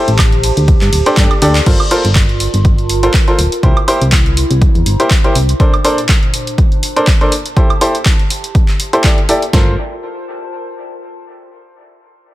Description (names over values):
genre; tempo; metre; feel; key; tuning
piano house; 122 BPM; 4/4; swing 55% on 16ths; G dorian; A4 = 442 Hz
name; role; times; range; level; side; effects
clear grand piano; riff; 0.0-9.7 s; D4 to D5; -16 LUFS; equal; sidechain pumping, low-pass filter, dub echo
warbly tape-like pad; texture; 0.0-11.5 s; Bb2 to C6; -22 LUFS; right 1 dB; chorus, built-in reverb, sidechain pumping
solid FM bass; bass; 0.1-5.5, 9.5-9.8 s; D1 to G2; -14 LUFS; equal; sidechain pumping
punchy analog drum machine; drums; 0.1-9.5 s; crash cymbal, handclaps, hi-hat, ride cymbal, woodblock; -18 LUFS; right 1 dB; overdrive
punchy analog drum machine; drums; 0.2-9.7 s; kick drum, snare drum; -11 LUFS; equal; overdrive
room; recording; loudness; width
digital ambience; none; -9 LUFS; side -16 dB against mid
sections
0.0-1.7 A section; 1.7-9.5 B section; 9.5-11.5 C section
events
drop 0.0-1.7; drum fill 1.2-1.7; fade-out on ambient pad 1.7-9.5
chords
0.0 Am7; 0.7 D7sus4; 1.7 Gm11; 3.6 C7; 5.6 Bbmaj9; 7.3 Am7; 9.5 Gm11 (rootless)